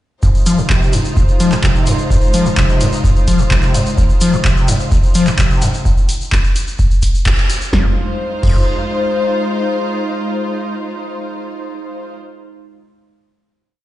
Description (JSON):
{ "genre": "acid house", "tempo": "128 BPM", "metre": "4/4", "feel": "straight", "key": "F minor", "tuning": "A4 = 440 Hz", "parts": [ { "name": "dark studio string section", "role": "sustained chords", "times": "0.2-12.1 s", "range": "Ab3 to C5", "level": "-20 LUFS", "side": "left 1 dB", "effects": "sidechain pumping" }, { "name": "overdriven acid bass", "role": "riff", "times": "0.2-8.6 s", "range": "F2 to F3", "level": "-17 LUFS", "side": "left 1 dB", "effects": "distortion, analog chorus, digital delay" }, { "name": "electronic kick drum", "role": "drums", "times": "0.2-8.6 s", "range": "none", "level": "-14 LUFS", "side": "equal", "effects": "none" }, { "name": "egg shaker", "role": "percussion", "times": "0.2-7.7 s", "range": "none", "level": "-27 LUFS", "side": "left 2 dB", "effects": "none" }, { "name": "punchy analog drum machine", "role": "drums", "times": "0.5-8.6 s", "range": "crash cymbal, handclaps, hi-hat, snare drum", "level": "-21 LUFS", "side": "equal", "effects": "none" } ], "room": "light reverb, digital ambience", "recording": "played on a big sound system in a bare room, large studio reverb, nothing above 10.6 kHz", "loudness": "-12 LUFS", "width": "side -15 dB against mid", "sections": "0.2-7.7 groove; 7.7-11.5 final chord", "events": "band accent 7.3", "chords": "0.2 Fm7", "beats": "| 0.23 0.70 1.17 1.64 | 2.10 2.57 3.04 3.51 | 3.98 4.45 4.92 5.38 | 5.85 6.32 6.79 7.26 | 7.73 8.20 8.67 9.13 | 9.60 10.07 10.54 11.01" }